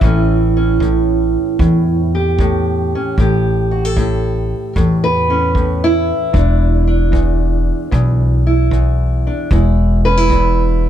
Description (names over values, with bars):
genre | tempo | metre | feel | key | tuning
acoustic country blues, solo or duo | 76 BPM | 4/4 | swing 68% on 8ths | unclear | A4 = 441 Hz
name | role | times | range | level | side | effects
fingerpicked steel-string acoustic guitar | melody | 0.0-10.9 s | E2 to B4 | -16 LUFS | right 2 dB | none
upright bass | bass | 0.0-10.9 s | E1 to E2 | -15 LUFS | equal | none
kick drum | drums | 0.0-10.6 s | none | -18 LUFS | equal | none
room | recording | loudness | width
little or no reverb | dark, warm production | -12 LUFS | side -10 dB against mid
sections
0.0-10.9 A section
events
none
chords
0.0 A7; 6.3 E5